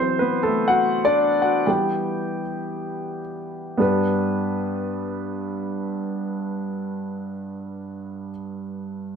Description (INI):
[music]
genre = pop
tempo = free time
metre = none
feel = none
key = G major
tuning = A4 = 438 Hz
[part]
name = warm grand piano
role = accompaniment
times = 0.0-9.2 s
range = G2 to G5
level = -22 LUFS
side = equal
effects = none
[sound]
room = moderate large studio reverb, RT60 1.1 s, small room ambience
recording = none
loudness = -21 LUFS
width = side -6 dB against mid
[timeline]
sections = 0.0-3.8 A section; 3.8-8.3 B section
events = slowing down 0.0-3.8; grand piano solo 0.0-3.8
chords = 0.0 D6; 1.7 Em; 3.8 G